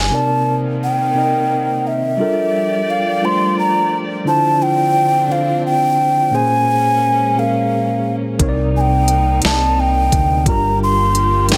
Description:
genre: slow six-eight R&B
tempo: 58 BPM (dotted quarters)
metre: 6/8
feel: straight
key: unclear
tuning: A4 = 437 Hz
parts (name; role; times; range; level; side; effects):
- breathy mellow alto ocarina; melody; 0.0-11.6 s; E5 to C6; -18 LUFS; equal; none
- mellow tine electric piano; accompaniment; 0.0-11.6 s; Bb2 to Eb5; -22 LUFS; equal; none
- deep dub fingered electric bass; bass; 0.0-0.1, 8.4-11.6 s; G1 to D2; -20 LUFS; equal; none
- warm studio string section; sustained chords; 0.1-11.6 s; C3 to D5; -28 LUFS; equal; none
- smooth R&B drum kit; drums; 8.4-11.6 s; hi-hat, kick drum, snare drum; -19 LUFS; equal; none
room: light reverb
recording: none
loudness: -16 LUFS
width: mono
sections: 0.1-11.6 A section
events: none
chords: 0.1 Cm9; 2.2 Gm9; 4.3 Dm9; 6.3 Bbm9; 8.4 Cm9; 10.5 Gm7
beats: | 0.12 1.15 | 2.19 3.22 | 4.26 5.29 | 6.33 7.36 | 8.39 9.43 | 10.46 11.50

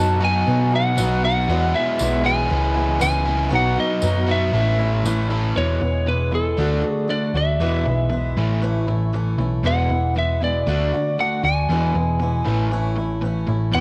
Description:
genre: folk rock and heartland rock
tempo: 117 BPM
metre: 4/4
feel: straight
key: E mixolydian from 5.6 s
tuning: A4 = 441 Hz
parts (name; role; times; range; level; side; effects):
- lightly driven lead guitar; melody; 0.0-13.8 s; A4 to A5; -25 LUFS; equal; none
- picked swing-style acoustic guitar; accompaniment; 0.0-13.8 s; E2 to F#4; -29 LUFS; equal; none
- crunchy overdriven guitar; riff; 0.0-13.8 s; E2 to A4; -28 LUFS; equal; none
- hollow-body short-scale picked electric bass; bass; 0.0-13.8 s; E1 to B2; -24 LUFS; equal; none
- tambourine; percussion; 1.0-5.2 s; none; -36 LUFS; equal; none
room: light reverb, small room ambience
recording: none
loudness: -20 LUFS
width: mono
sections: 0.0-5.6 A section; 5.6-13.8 B section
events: none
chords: 0.0 B; 1.5 Eadd9; 2.5 C#m7; 3.5 B; 4.5 A; 5.6 E; 6.6 D; 7.6 E; 8.4 A; 9.6 E; 10.7 D; 11.7 E; 12.5 A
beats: 0.46 0.97 | 1.48 1.99 2.50 3.01 | 3.52 4.03 4.54 5.05 | 5.56 6.07 6.58 7.09 | 7.61 8.12 8.63 9.14 | 9.65 10.16 10.67 11.18 | 11.69 12.20 12.71 13.23 | 13.74

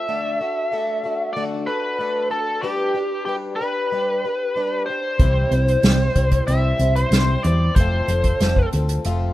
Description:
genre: folk rock and heartland rock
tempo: 94 BPM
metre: 4/4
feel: straight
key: unclear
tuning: A4 = 440 Hz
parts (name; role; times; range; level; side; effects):
- biting lead guitar; melody; 0.0-8.7 s; G4 to E5; -22 LUFS; equal; overdrive
- picked plugged-in twelve-string acoustic guitar; accompaniment; 0.0-9.3 s; C3 to C5; -27 LUFS; left 4 dB; none
- hollow-body short-scale fingered electric bass; bass; 5.2-9.3 s; F1 to E2; -19 LUFS; equal; none
- unplugged drum kit; drums; 5.2-9.2 s; hi-hat, kick drum, snare drum; -20 LUFS; equal; none
room: light reverb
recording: rough home demo mix, lossy compression artefacts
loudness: -18 LUFS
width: side -15 dB against mid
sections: 0.0-9.3 A section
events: none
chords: 0.1 D; 2.6 G; 5.2 C; 7.8 F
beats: | 0.06 0.70 1.34 1.99 | 2.63 3.27 3.91 4.55 | 5.20 5.84 6.48 7.12 | 7.76 8.41 9.05

